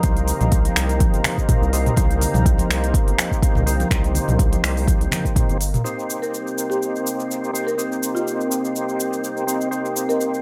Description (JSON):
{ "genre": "afro house", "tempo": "124 BPM", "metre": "4/4", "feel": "swing 55% on 16ths", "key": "C minor", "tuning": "A4 = 440 Hz", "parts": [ { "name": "dark analog pad", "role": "sustained chords", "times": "0.0-10.4 s", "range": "C4 to Bb5", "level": "-30 LUFS", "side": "equal", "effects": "chorus, sidechain pumping" }, { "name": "overdriven tonewheel organ", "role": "stabs", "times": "0.0-10.4 s", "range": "Bb3 to C5", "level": "-28 LUFS", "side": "equal", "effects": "chorus vibrato, slow rotary speaker, sidechain pumping, tape echo" }, { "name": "round analog bass", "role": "bass", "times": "0.0-5.8 s", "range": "G1 to C2", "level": "-24 LUFS", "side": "equal", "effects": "sidechain pumping" }, { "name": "afro-pop drum kit", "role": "drums", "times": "0.0-10.4 s", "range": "finger snaps, hi-hat, shaker, toms", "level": "-27 LUFS", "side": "equal", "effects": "none" }, { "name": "electronic kick drum", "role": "drums", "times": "0.0-5.5 s", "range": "none", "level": "-21 LUFS", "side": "equal", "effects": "none" }, { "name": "congas", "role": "percussion", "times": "0.0-5.2 s", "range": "none", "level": "-30 LUFS", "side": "equal", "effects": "none" }, { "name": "buzzing marimba with medium mallets", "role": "melody", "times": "6.2-10.3 s", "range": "F4 to Bb4", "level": "-29 LUFS", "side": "equal", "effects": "dub echo" } ], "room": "light reverb, digital ambience", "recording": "none", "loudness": "-20 LUFS", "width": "mono", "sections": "0.0-5.8 A section; 5.8-10.4 B section", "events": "none", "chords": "0.0 Cm7" }